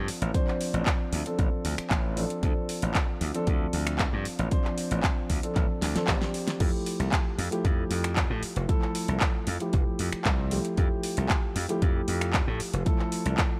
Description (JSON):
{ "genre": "nu-disco, nu disco", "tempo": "115 BPM", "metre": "4/4", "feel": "straight", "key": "F major", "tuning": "A4 = 441 Hz", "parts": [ { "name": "dark grand piano", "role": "accompaniment", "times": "0.0-13.6 s", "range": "F3 to C5", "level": "-34 LUFS", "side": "equal", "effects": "sidechain pumping" }, { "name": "slap bass", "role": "bass", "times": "0.0-13.3 s", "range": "F1 to A2", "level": "-32 LUFS", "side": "equal", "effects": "none" }, { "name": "pop drum kit", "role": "drums", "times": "0.1-13.5 s", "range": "crash cymbal, finger snaps, handclaps, hi-hat, snare drum", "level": "-34 LUFS", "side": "equal", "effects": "small room ambience" }, { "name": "electronic kick drum", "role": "drums", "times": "0.3-13.5 s", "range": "none", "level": "-29 LUFS", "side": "equal", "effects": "small room ambience" } ], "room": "digital ambience", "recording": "dry, gritty hardware recording", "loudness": "-28 LUFS", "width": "mono", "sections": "0.0-13.6 A section", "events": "drum fill 5.8-6.6", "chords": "0.0 Dm7; 6.6 Fmaj9" }